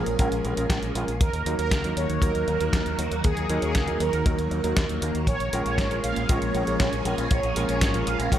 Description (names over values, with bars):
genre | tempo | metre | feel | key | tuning
italo disco | 118 BPM | 4/4 | straight | Eb minor | A4 = 440 Hz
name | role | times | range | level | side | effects
mellow synth brass | melody | 0.0-8.4 s | Ab4 to F5 | -29 LUFS | right 2 dB | chorus, digital delay, shimmer reverb
phased string machine | sustained chords | 0.0-8.4 s | Eb3 to Ab4 | -30 LUFS | equal | ensemble chorus, phaser, shimmer reverb
warm electric grand piano | stabs | 0.0-8.4 s | Gb3 to Bb4 | -30 LUFS | right 2 dB | shimmer reverb
fingered electric bass with an envelope filter | bass | 0.0-8.4 s | Ab1 to Eb2 | -29 LUFS | equal | none
detuned 8-bit digital drum machine | drums | 0.1-8.4 s | hi-hat, snare drum | -30 LUFS | equal | small room reverb, gated reverb
kick drum | drums | 0.2-8.4 s | none | -24 LUFS | equal | small room reverb
room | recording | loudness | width
light reverb, digital ambience | none | -22 LUFS | side -11 dB against mid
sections
0.0-8.4 A section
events
none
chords
0.0 Bbm7; 1.2 Ebm; 5.3 Bbm7